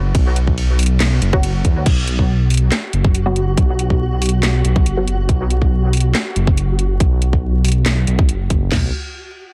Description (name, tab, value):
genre	deep dubstep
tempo	140 BPM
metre	4/4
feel	half-time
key	unclear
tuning	A4 = 445 Hz
part	dark detuned saw bass	bass	0.0-8.9 s	F#1 to E2	-18 LUFS	equal	none
part	garage drum kit	drums	0.1-8.8 s	crash cymbal, kick drum, snare drum, toms	-18 LUFS	equal	none
part	garage drum kit	drums	0.1-8.6 s	crash cymbal, handclaps, hi-hat, ride cymbal, snare drum	-25 LUFS	equal	none
part	filtered dub chord stab	stabs	1.3-5.1 s	F#3 to F#4	-28 LUFS	equal	phaser, analog chorus, dub echo
part	flickering grainy texture	texture	2.5-8.7 s	F#4	-30 LUFS	equal	built-in reverb
room	digital ambience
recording	dense, heavily limited modern master, vinyl crackle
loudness	-16 LUFS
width	mono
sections	0.0-1.9 A section; 1.9-8.7 B section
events	drop 0.0-1.9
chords	0.0 B5; 8.7 N.C.